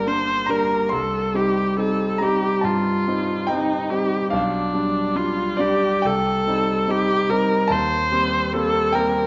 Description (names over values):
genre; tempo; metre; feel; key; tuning
classical, romantic duo for viola and grand piano; 71 BPM; 4/4; rubato; unclear; A4 = 440 Hz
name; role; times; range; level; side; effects
clear viola; melody; 0.0-9.3 s; D4 to C5; -24 LUFS; equal; none
clear concert grand piano; accompaniment; 0.0-9.3 s; G1 to C6; -24 LUFS; equal; none
room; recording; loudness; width
wet recital hall reverb, RT60 1.3 s; nothing above 7.6 kHz; -21 LUFS; mono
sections
0.0-9.3 A section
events
none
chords
0.0 Gm; 0.9 Cm; 4.3 G7/B; 6.0 Cm; 7.7 Cm7/Eb